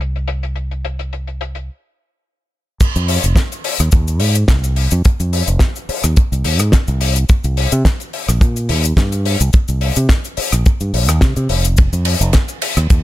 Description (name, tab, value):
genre	nu-disco, nu disco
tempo	107 BPM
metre	4/4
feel	swing 54% on 16ths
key	F minor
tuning	A4 = 444 Hz
part	fingered electric bass	bass	0.0-13.0 s	F1 to C3	-16 LUFS	equal	sidechain pumping
part	damped 70s drum kit	drums	0.0-13.0 s	cabasa, crash cymbal, hi-hat, ride cymbal, rim click, snare drum	-20 LUFS	left 3 dB	low-pass filter on hats, studio reverb, low-pass filter on cymbals, low-pass filter on snare, low-pass filter on perc, low-pass filter on room
part	kick drum	drums	2.8-13.0 s	none	-12 LUFS	equal	studio reverb
room	little or no reverb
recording	none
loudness	-13 LUFS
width	side -15 dB against mid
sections	0.0-2.8 A section; 2.8-13.0 B section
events	stop 1.7-2.8; drop 2.8-13.0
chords	none